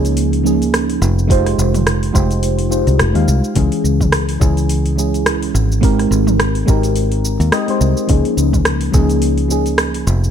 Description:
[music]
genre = sunset chillout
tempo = 106 BPM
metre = 4/4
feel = swing 57% on 16ths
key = unclear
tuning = A4 = 441 Hz
[part]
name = mellow FM electric piano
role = accompaniment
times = 0.0-10.3 s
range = Fb3 to F5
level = -17 LUFS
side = moving between left 5 dB and right 6 dB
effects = chorus, phaser, auto-pan, digital delay
[part]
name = fingered electric bass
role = bass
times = 0.0-10.3 s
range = F1 to Eb2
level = -16 LUFS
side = equal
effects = none
[part]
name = deep house drum kit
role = drums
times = 0.0-10.3 s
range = cabasa, hi-hat, rim click, toms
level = -21 LUFS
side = right 1 dB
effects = overdrive
[part]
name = electronic kick drum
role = drums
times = 1.3-9.1 s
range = none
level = -15 LUFS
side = equal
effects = none
[sound]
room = light reverb, digital ambience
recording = none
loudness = -13 LUFS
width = side -8 dB against mid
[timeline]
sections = 0.0-10.3 A section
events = none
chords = 0.0 Db6; 1.3 Fm7; 3.6 Dbm; 5.8 Abmaj7; 8.1 Db6

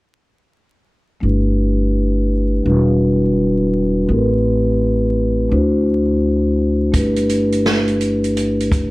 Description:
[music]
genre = hip hop, jazz-hop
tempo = 84 BPM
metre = 4/4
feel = swing 64% on 16ths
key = G major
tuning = A4 = 436 Hz
[part]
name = vibraphone with soft mallets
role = accompaniment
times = 1.2-8.9 s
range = G3 to C5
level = -16 LUFS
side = equal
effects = low-pass filter
[part]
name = upright bass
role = bass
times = 1.2-8.9 s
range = E1 to D2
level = -19 LUFS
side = equal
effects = none
[part]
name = open jazz drum kit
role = drums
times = 6.9-8.9 s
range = hi-hat, kick drum, snare drum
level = -20 LUFS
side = equal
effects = none
[sound]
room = moderate studio reverb, RT60 0.6 s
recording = vinyl crackle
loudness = -14 LUFS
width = side -20 dB against mid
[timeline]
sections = 1.2-8.9 A section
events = filter sweep on vibraphone 1.2-8.9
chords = 1.2 G69; 2.7 Em9; 4.1 Am7; 5.5 D9; 6.9 G69

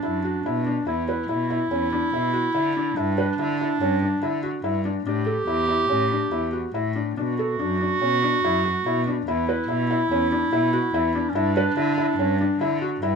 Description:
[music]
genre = contemporary instrumental, chamber music in an uneven meter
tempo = 143 BPM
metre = 5/4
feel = straight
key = E dorian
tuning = A4 = 438 Hz
[part]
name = clear clarinet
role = second line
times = 0.0-13.2 s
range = C#4 to G4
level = -24 LUFS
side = right 3 dB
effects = none
[part]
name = felt-muted upright piano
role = arpeggios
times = 0.0-13.2 s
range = C#4 to B4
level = -25 LUFS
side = left 3 dB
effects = none
[part]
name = rich cello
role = bass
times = 0.0-13.2 s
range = E2 to D3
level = -27 LUFS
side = right 1 dB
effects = none
[sound]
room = light reverb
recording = minimal, uncompressed stereo recording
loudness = -21 LUFS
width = side -5 dB against mid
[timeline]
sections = 0.0-13.2 A section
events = none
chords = 0.0 Bm; 0.9 E5; 3.0 G5; 5.1 A7sus4; 7.2 Bm; 9.3 E5; 11.4 G5

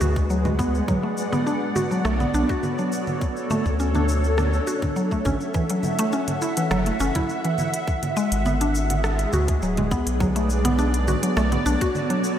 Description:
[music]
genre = organic downtempo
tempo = 103 BPM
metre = 4/4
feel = straight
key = F# minor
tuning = A4 = 439 Hz
[part]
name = granular cloud pad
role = sustained chords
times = 0.0-12.4 s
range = G#3 to F#5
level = -26 LUFS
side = right 1 dB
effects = built-in reverb, wide subtle chorus, sidechain pumping
[part]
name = mallet-like synth pluck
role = arpeggios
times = 0.0-12.4 s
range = E3 to F#4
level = -25 LUFS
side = equal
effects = chorus, analog delay
[part]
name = round analog bass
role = bass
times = 0.0-11.8 s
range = D1 to D2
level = -23 LUFS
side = equal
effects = sidechain pumping
[part]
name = organic electronic drum kit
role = drums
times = 0.0-12.4 s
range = cabasa, congas, hi-hat, rim click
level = -30 LUFS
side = right 1 dB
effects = none
[part]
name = electronic kick drum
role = drums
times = 0.2-11.9 s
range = none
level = -26 LUFS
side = equal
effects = none
[sound]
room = moderate lush hall reverb, RT60 2.5 s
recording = dreamy mix soaked in reverb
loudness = -20 LUFS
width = side -10 dB against mid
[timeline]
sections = 0.0-5.5 A section; 5.5-12.4 B section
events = none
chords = 0.0 G#m7b5; 0.9 Bm7; 3.2 Dmaj7; 5.5 F#m7; 7.9 G#m7b5; 10.2 Bm7

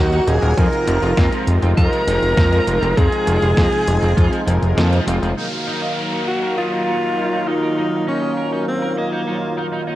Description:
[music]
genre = synthwave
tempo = 100 BPM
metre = 4/4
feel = straight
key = unclear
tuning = A4 = 444 Hz
[part]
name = clear alto saxophone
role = melody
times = 0.0-9.8 s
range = Bb3 to Bb4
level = -21 LUFS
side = equal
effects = cassette tape, tape echo
[part]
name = string machine, violins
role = second line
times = 0.0-4.7 s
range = Gb5 to Bb5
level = -27 LUFS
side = equal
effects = ensemble chorus, cassette tape, tape echo
[part]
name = brassy analog pad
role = sustained chords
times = 0.0-10.0 s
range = Bb2 to F5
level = -26 LUFS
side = equal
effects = chorus, sidechain pumping, cassette tape
[part]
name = overdriven electric guitar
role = riff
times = 0.0-9.9 s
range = F3 to Eb5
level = -29 LUFS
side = right 1 dB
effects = wide subtle chorus, low-pass filter, cassette tape, analog delay
[part]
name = analog synth brass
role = stabs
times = 0.0-10.0 s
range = Gb3 to F5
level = -25 LUFS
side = right 1 dB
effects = chorus, vintage 12-bit sampler grit, cassette tape
[part]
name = fat analog bass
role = bass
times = 0.0-5.3 s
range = Eb1 to F2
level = -17 LUFS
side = equal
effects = none
[part]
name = detuned 8-bit digital drum machine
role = drums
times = 0.1-5.3 s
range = hi-hat, snare drum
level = -26 LUFS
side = equal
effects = overdrive, low-pass filter on hats, cassette tape, low-pass filter on snare, low-pass filter on room
[part]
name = electronic kick drum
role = drums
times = 0.6-4.3 s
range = none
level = -17 LUFS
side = equal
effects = overdrive, cassette tape
[part]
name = downlifter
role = sound effects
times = 5.4-10.0 s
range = none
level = -29 LUFS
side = equal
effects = none
[sound]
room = light reverb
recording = home recording on cassette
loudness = -15 LUFS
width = side -14 dB against mid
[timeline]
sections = 0.0-5.4 A section; 5.4-10.0 B section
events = kick drops out 4.8-5.4; band accent 4.8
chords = 0.0 Ebm; 0.6 Fm7; 5.4 Ebmadd9

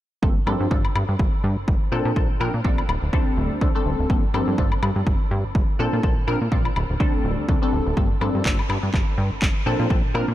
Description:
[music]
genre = filtered disco house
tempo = 124 BPM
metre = 4/4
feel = swing 55% on 16ths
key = G minor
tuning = A4 = 440 Hz
[part]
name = funky polysynth comp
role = accompaniment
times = 0.2-10.3 s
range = F3 to Bb4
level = -26 LUFS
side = left 1 dB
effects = chorus, phaser, sidechain pumping, low-pass filter
[part]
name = plucky analog bass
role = bass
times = 0.2-10.3 s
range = D1 to Bb2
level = -24 LUFS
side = equal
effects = sidechain pumping, low-pass filter
[part]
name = electronic kick drum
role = drums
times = 0.2-10.0 s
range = none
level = -22 LUFS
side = equal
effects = overdrive
[part]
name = electronic woodblock and handclaps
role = drums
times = 0.5-10.3 s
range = none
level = -31 LUFS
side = left 2 dB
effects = overdrive, sidechain pumping on perc
[sound]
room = light reverb, digital ambience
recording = none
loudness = -19 LUFS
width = side -14 dB against mid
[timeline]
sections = 0.2-10.3 A section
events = none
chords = 0.2 Gm11; 1.9 Bbmaj7; 2.9 D7sus4; 4.1 Gm11; 5.8 Bbmaj7; 6.8 D7sus4; 8.0 Gm11; 9.7 Bbmaj7

